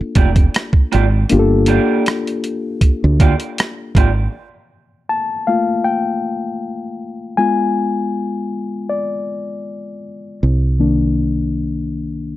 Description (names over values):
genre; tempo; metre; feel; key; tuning
R&B, neo-soul; 79 BPM; 4/4; swing 53% on 16ths; G minor; A4 = 438 Hz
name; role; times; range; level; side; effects
mellow reed electric piano; accompaniment; 0.0-12.4 s; Eb3 to A5; -19 LUFS; left 3 dB; none
woody fretless electric bass; bass; 0.0-4.3, 10.4-12.4 s; F1 to D2; -16 LUFS; right 1 dB; none
electric guitar through a small old amp; second line; 0.2-4.1 s; Bb3 to D5; -21 LUFS; right 7 dB; spring reverb
boom bap sampler-style drum kit; drums; 0.2-4.1 s; hi-hat, kick drum, rim click; -14 LUFS; right 1 dB; none
room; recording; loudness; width
little or no reverb; dark, warm production; -15 LUFS; side -15 dB against mid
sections
0.0-4.3 A section; 4.3-12.4 B section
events
reed electric piano solo 4.3-12.4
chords
0.0 Gm7; 4.3 Gm9; 7.4 G#dim7; 10.4 Cm9